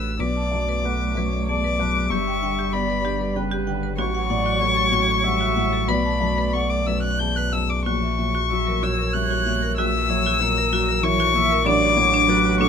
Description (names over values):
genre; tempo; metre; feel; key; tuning
neoclassical piano and strings; 95 BPM; 3/4; rubato; B minor; A4 = 440 Hz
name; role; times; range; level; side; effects
muted violin; melody; 0.0-12.7 s; B5 to G6; -22 LUFS; left 6 dB; none
felt-muted upright piano; accompaniment; 0.0-12.7 s; A1 to F#4; -26 LUFS; left 3 dB; none
muted viola; accompaniment; 0.0-12.7 s; A4 to E5; -28 LUFS; right 2 dB; none
marimba with hard mallets; arpeggios; 0.0-12.7 s; D4 to A5; -29 LUFS; right 7 dB; none
warm sub bass; bass; 0.0-12.7 s; G1 to B1; -27 LUFS; equal; none
muted cello; second line; 0.2-12.7 s; E3 to A3; -30 LUFS; right 10 dB; none
room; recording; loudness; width
little or no reverb; minimal, uncompressed stereo recording; -19 LUFS; side -7 dB against mid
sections
0.2-12.7 A section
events
none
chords
0.2 Bm7; 2.1 G; 4.0 F#m/A; 5.9 Bm7; 7.9 F#7/A#; 11.7 Dmaj7/A